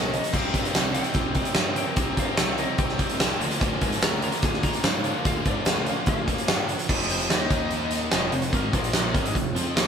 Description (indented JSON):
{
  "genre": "classic rock",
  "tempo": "146 BPM",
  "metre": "4/4",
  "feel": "straight",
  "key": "F dorian",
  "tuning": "A4 = 442 Hz",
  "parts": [
    { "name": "lightly driven lead guitar", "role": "melody", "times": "0.0-9.3 s", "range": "Bb4 to Bb5", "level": "-34 LUFS", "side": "left 3 dB", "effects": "none" },
    { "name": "distorted electric guitar", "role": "riff", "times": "0.0-9.9 s", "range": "F2 to F4", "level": "-33 LUFS", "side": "right 6 dB", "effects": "distortion" },
    { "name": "overdriven electric guitar", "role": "riff", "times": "0.0-9.9 s", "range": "F2 to G4", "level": "-31 LUFS", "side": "left 6 dB", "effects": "none" },
    { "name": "tight distorted guitar", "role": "riff", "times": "0.0-9.9 s", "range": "F2 to F4", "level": "-36 LUFS", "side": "right 1 dB", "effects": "none" },
    { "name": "fuzz picked electric bass", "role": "bass", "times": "0.0-9.9 s", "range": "F1 to Ab2", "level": "-31 LUFS", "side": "equal", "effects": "overdrive" },
    { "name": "big rock drum kit", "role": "drums", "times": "0.1-9.9 s", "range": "crash cymbal, hi-hat, kick drum, snare drum", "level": "-24 LUFS", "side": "right 1 dB", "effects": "none" },
    { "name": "tambourine", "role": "percussion", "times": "0.1-9.9 s", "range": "none", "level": "-45 LUFS", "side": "right 5 dB", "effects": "none" }
  ],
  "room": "moderate studio reverb, RT60 0.5 s",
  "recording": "band playing live in one room",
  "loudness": "-22 LUFS",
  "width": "side -7 dB against mid",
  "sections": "0.0-6.9 A section; 6.9-9.9 B section",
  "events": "none",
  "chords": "0.3 Cm; 3.4 Bb/D; 6.9 F5; 7.5 Eb5; 8.1 Fm; 8.7 Bb5; 9.2 Fm",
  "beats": "| 0.33 0.74 1.15 1.56 | 1.97 2.38 2.79 3.20 | 3.61 4.02 4.43 4.84 | 5.25 5.66 6.07 6.48 | 6.89 7.30 7.71 8.12 | 8.53 8.95 9.36 9.77"
}